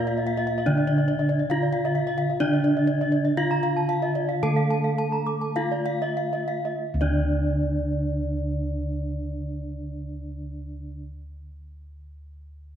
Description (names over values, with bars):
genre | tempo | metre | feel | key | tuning
gamelan | 46-78 BPM | 4/4 | straight | D pelog | A4 = 440 Hz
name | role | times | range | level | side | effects
gamelan-type bronze metallophone | melody | 0.0-11.0 s | D4 to A4 | -28 LUFS | right 1 dB | none
gamelan-type bronze metallophone | accompaniment | 0.0-11.0 s | D3 to Bb3 | -30 LUFS | right 1 dB | none
gamelan-type bronze metallophone | arpeggios | 0.0-11.0 s | D5 to Bb5 | -32 LUFS | right 3 dB | none
gamelan-type bossed gongs | bass | 0.0-10.9 s | D2 to Bb4 | -29 LUFS | equal | none
gamelan-type bronze metallophone | arpeggios | 0.1-11.0 s | D5 to D6 | -31 LUFS | left 4 dB | none
room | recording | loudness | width
moderate concert hall reverb, RT60 1.8 s | none | -22 LUFS | side -9 dB against mid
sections
0.0-6.8 A section; 6.8-12.1 B section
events
slowing down 0.0-6.8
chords
none